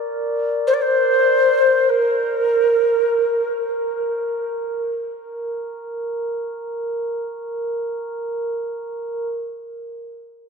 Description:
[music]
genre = world meditative, free-time meditation music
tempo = free time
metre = none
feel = none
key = Bb major pentatonic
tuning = A4 = 440 Hz
[part]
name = glass harmonica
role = texture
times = 0.0-9.3 s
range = Bb4 to D5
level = -24 LUFS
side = equal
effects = none
[part]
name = mellow Native American-style cedar flute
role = melody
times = 0.7-4.0 s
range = Bb4 to D5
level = -17 LUFS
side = equal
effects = tape echo
[sound]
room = wet plate reverb, RT60 2.5 s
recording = echo-heavy mix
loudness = -18 LUFS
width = side -5 dB against mid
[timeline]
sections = 0.0-4.9 A section; 4.9-8.6 B section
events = none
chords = none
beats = free time

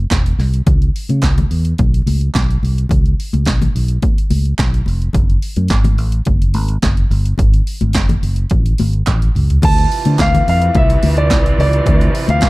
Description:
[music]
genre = disco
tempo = 107 BPM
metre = 4/4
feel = straight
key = C# minor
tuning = A4 = 436 Hz
[part]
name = fingered electric bass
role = bass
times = 0.0-12.5 s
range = E1 to D3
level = -15 LUFS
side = equal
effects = none
[part]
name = house drum kit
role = drums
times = 0.1-12.5 s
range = crash cymbal, hi-hat, kick drum, snare drum, toms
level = -16 LUFS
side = equal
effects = none
[part]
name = congas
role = percussion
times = 0.1-12.5 s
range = none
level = -23 LUFS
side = left 3 dB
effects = none
[part]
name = group handclap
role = percussion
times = 0.1-12.5 s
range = none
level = -25 LUFS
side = right 6 dB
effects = none
[part]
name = warm concert grand piano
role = melody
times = 9.6-12.5 s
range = D5 to A5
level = -17 LUFS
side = equal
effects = none
[part]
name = rich studio string section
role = sustained chords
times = 9.6-12.5 s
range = C3 to F3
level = -22 LUFS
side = right 2 dB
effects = none
[sound]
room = small room ambience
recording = dark, warm production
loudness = -12 LUFS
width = side -21 dB against mid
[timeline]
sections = 0.0-9.6 A section; 9.6-12.5 B section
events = drum fill 9.1-9.6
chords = 0.0 N.C.; 0.7 C#7(no3); 5.2 F#sus2; 8.5 A; 9.6 Dm9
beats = 0.11 | 0.67 1.23 1.79 2.35 | 2.91 3.47 4.03 4.59 | 5.15 5.71 6.27 6.83 | 7.39 7.95 8.51 9.07 | 9.63 10.19 10.75 11.30 | 11.86 12.42

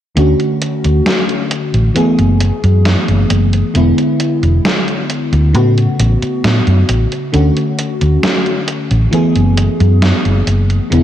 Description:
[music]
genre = vaporwave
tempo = 67 BPM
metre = 4/4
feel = straight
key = unclear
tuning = A4 = 444 Hz
[part]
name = FM electric piano with soft pad layer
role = accompaniment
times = 0.2-11.0 s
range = C#3 to G#4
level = -15 LUFS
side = equal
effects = wide subtle chorus, analog delay
[part]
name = hollow-body short-scale fingered electric bass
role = bass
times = 0.2-11.0 s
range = E1 to A2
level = -11 LUFS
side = equal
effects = none
[part]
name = gated 80s digital drum machine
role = drums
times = 0.2-11.0 s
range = hi-hat, snare drum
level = -18 LUFS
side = equal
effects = gated reverb, gated reverb snare, vintage 12-bit sampler grit
[sound]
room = light reverb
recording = cassette tape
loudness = -11 LUFS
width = side -11 dB against mid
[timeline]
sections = 0.2-11.0 A section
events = none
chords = 0.2 Dmaj7; 2.0 F#m11; 3.8 E7; 5.5 A69; 7.3 Dmaj7; 9.1 F#m11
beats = | 0.17 1.06 1.96 2.85 | 3.75 4.65 5.54 6.44 | 7.33 8.23 9.12 10.02 | 10.91

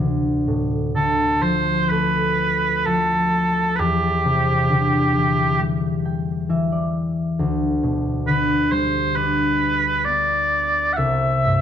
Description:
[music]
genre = celtic folk, Celtic slow air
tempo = 62-69 BPM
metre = 4/4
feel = rubato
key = D dorian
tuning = A4 = 443 Hz
[part]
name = concert harp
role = accompaniment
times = 0.0-11.6 s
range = C2 to G5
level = -20 LUFS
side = left 1 dB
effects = none
[part]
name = mellow small bagpipes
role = melody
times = 1.0-11.6 s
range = G4 to F#5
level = -20 LUFS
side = right 2 dB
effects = none
[sound]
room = moderate recital hall reverb, RT60 1.6 s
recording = dark, warm production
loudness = -18 LUFS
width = side -9 dB against mid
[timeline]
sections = 0.0-11.6 A section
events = harp fill 5.6-7.4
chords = 0.0 Dm; 3.8 Cadd9/E; 7.4 G/D; 11.0 C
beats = 0.94 1.89 2.85 | 3.78 4.70 5.60 6.48 | 7.38 8.26 9.15 10.05 | 10.97

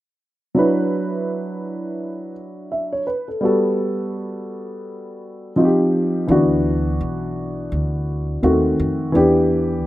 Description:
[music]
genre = hip hop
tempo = 84 BPM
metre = 4/4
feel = swing 59% on 16ths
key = D major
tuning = A4 = 440 Hz
[part]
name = dark baby grand piano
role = accompaniment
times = 0.5-9.9 s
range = D#3 to E5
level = -18 LUFS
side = equal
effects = none
[part]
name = upright bass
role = bass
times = 6.3-9.9 s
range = B1 to F2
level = -24 LUFS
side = equal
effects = none
[sound]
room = light reverb, small room reverb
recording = rough home demo mix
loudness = -17 LUFS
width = side -15 dB against mid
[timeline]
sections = 0.6-9.9 A section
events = none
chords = 0.6 D69; 3.4 Gmaj9; 5.6 Eb69; 6.3 D69; 8.4 D#dim7; 9.1 Em7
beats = | 0.57 1.29 2.00 2.72 | 3.43 4.14 4.86 5.57 | 6.29 7.00 7.72 8.43 | 9.14 9.86

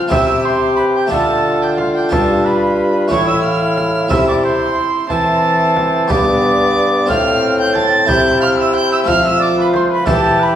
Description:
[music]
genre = classical, renaissance-style consort dance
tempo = 60 BPM (dotted quarters)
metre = 6/8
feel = straight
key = unclear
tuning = A4 = 440 Hz
[part]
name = warm oboe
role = melody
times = 0.0-10.6 s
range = F4 to A5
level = -21 LUFS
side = left 2 dB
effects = none
[part]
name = harpsichord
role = accompaniment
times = 0.0-10.6 s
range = G2 to G4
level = -20 LUFS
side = equal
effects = none
[part]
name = warm viola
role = accompaniment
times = 0.0-10.6 s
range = B3 to G4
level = -20 LUFS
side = left 2 dB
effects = none
[part]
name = clear bassoon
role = bass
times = 0.0-10.6 s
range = G2 to F3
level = -17 LUFS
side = right 1 dB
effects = none
[part]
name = warm violin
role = second line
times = 0.1-10.6 s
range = F5 to A6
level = -18 LUFS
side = right 3 dB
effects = none
[part]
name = frame drum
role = percussion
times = 0.1-10.4 s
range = none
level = -24 LUFS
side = equal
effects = none
[sound]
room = wet recital hall reverb, RT60 1.5 s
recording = recorded in a church or concert hall, vinyl crackle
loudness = -12 LUFS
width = side -10 dB against mid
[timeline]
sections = 0.0-10.6 A section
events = none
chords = 0.1 C; 1.1 Dm; 2.1 G; 3.1 A; 4.1 C; 6.1 G; 7.1 F/A; 8.1 C; 9.1 F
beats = | 0.11 1.11 | 2.11 3.11 | 4.10 5.10 | 6.10 7.10 | 8.09 9.08 | 10.07

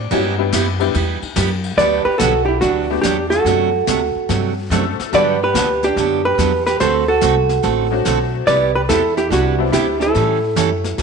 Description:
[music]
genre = country, western swing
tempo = 144 BPM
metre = 4/4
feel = swing 67% on 8ths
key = G major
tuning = A4 = 440 Hz
[part]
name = upright bass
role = bass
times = 0.0-11.0 s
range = A1 to A2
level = -22 LUFS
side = left 1 dB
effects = none
[part]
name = honky-tonk upright piano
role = accompaniment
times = 0.1-10.1 s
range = F#3 to F#5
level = -23 LUFS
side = left 13 dB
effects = none
[part]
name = picked steel-string acoustic guitar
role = accompaniment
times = 0.1-11.0 s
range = C3 to A4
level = -22 LUFS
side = right 11 dB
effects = none
[part]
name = jazz brush drum kit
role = drums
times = 0.1-11.0 s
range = brushed snare drum, hi-hat, ride cymbal, snare drum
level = -26 LUFS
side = left 9 dB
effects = none
[part]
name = hollow-body jazz guitar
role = melody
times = 1.8-11.0 s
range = F#4 to D5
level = -18 LUFS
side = left 1 dB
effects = slapback echo
[part]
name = hollow-body jazz guitar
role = second line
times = 1.8-11.0 s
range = D4 to B4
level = -21 LUFS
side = right 10 dB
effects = none
[sound]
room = moderate plate reverb, RT60 1.6 s, small room ambience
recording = 1960s-style stereo with parts hard left and right, nothing above 10.4 kHz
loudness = -14 LUFS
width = side -5 dB against mid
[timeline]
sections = 0.0-1.8 A section; 1.8-11.0 B section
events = none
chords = 0.1 G6; 1.8 Gmaj9; 3.5 D7; 5.1 Gmaj7; 6.8 D7; 8.5 Cmaj9; 10.1 A7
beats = | 0.11 0.53 0.94 1.36 | 1.78 2.20 2.62 3.03 | 3.45 3.87 4.29 4.71 | 5.13 5.54 5.96 6.38 | 6.80 7.22 7.64 8.05 | 8.47 8.89 9.31 9.73 | 10.14 10.56 10.98

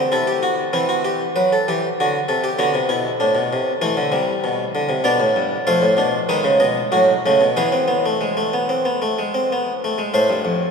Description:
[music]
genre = classical, baroque-style 4-part fugue for harpsichord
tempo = 96 BPM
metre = 4/4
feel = uneven beats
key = C major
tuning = A4 = 438 Hz
[part]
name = harpsichord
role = solo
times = 0.0-10.7 s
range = F2 to D#5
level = -16 LUFS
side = equal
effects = none
[sound]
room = wet cathedral reverb, RT60 6.0 s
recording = recorded in a church or concert hall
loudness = -16 LUFS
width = side -5 dB against mid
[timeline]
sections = 0.1-10.1 A section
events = none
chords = 0.1 C; 1.4 F#dim; 2.6 Bm; 3.8 Em; 5.1 Bdim; 6.3 B7; 7.6 E; 10.1 Am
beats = | 0.12 0.74 1.36 1.98 | 2.59 3.21 3.83 4.44 | 5.06 5.68 6.29 6.93 | 7.57 8.21 8.86 9.51 | 10.14

